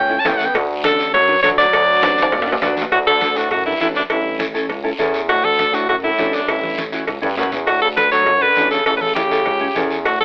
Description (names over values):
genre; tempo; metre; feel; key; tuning
latin, cumbia; 202 BPM; 4/4; straight; D major; A4 = 440 Hz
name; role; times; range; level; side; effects
edgy alto saxophone; melody; 0.0-10.2 s; D4 to A5; -15 LUFS; equal; none
clear trombone; second line; 0.0-10.2 s; F#2 to C#4; -25 LUFS; equal; none
growling FM bass; bass; 0.0-10.2 s; A1 to G2; -24 LUFS; equal; none
nylon-string guitar; accompaniment; 0.1-10.0 s; C#4 to D5; -23 LUFS; equal; none
congas; percussion; 0.3-10.2 s; none; -30 LUFS; equal; none
cowbell and timbales; percussion; 0.3-10.2 s; none; -22 LUFS; equal; none
guiro; percussion; 0.3-10.2 s; none; -29 LUFS; equal; none
room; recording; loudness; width
moderate studio reverb, RT60 0.9 s; telephone sound; -14 LUFS; side -34 dB against mid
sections
0.0-2.9 A section; 2.9-10.2 B section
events
drum fill 2.0-2.9, 7.2-7.7; nylon-string guitar fill 2.5-2.9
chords
0.0 A7; 0.5 D; 4.1 A7; 5.3 D; 6.5 A7; 7.7 D; 8.9 A7